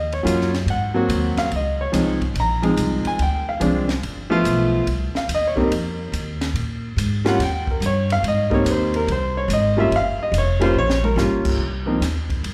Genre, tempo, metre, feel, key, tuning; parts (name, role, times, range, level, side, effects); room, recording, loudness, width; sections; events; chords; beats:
jazz piano trio; 143 BPM; 4/4; swing 66% on 8ths; A4 = 435 Hz
warm grand piano; melody; 0.0-12.0 s; F3 to Bb5; -23 LUFS; equal
upright bass; bass; 0.0-12.5 s; F1 to Bb2; -25 LUFS; equal
compact cocktail drum kit; drums; 0.1-12.5 s; crash cymbal, hi-hat, kick drum, ride cymbal, snare drum, toms; -31 LUFS; equal
moderate scoring stage reverb, RT60 2.0 s; recorded in a church or concert hall; -21 LUFS; mono
0.0-11.6 A section
grand piano solo 0.0-11.6; drum fill 10.8-11.2
0.0 Ebm7; 0.7 Ab7; 1.5 Dbmaj9; 3.2 Dm7b5; 4.0 G7; 4.9 Cm7; 6.6 Bb7(no3); 7.4 Eb; 8.2 Abmaj9; 9.9 Gm7b5; 11.6 Ab (rootless)
0.25 0.67 1.09 | 1.51 1.93 2.35 2.77 | 3.19 3.61 4.03 4.45 | 4.87 5.29 5.71 6.13 | 6.55 6.97 7.39 7.81 | 8.23 8.65 9.07 9.49 | 9.91 10.34 10.76 11.18 | 11.60 12.02 12.44